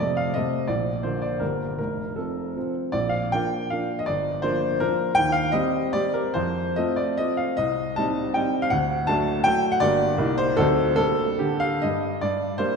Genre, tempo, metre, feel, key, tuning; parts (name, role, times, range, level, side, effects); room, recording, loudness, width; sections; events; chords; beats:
classical, romantic triple-time dance for piano with dotted rhythms; 133-181 BPM; 3/4; rubato; Bb major, G minor from 7.6 s; A4 = 440 Hz
warm baby grand piano; solo; 0.0-12.8 s; F1 to A5; -21 LUFS; equal
wet concert hall reverb, RT60 2.2 s; heard from further back in the room, nothing above 10.3 kHz; -21 LUFS; side -5 dB against mid
0.0-2.9 A section; 2.9-12.2 B section
0.0 F9; 0.7 Bb; 1.4 Gm; 1.8 F; 2.9 Bb; 4.1 Gm7; 5.2 Cm/Eb; 6.3 F; 7.6 Cm; 8.7 D; 9.8 Gm; 10.2 Cm7; 10.6 D7b9; 11.0 Gm
0.01 0.36 | 0.69 1.04 1.41 | 1.78 2.17 2.56 | 2.93 3.32 3.71 | 4.07 4.43 4.81 | 5.16 5.52 5.92 | 6.32 6.75 7.17 | 7.57 7.97 8.36 | 8.72 9.08 9.46 | 9.81 10.18 10.58 | 10.98 11.40 11.83 | 12.23 12.59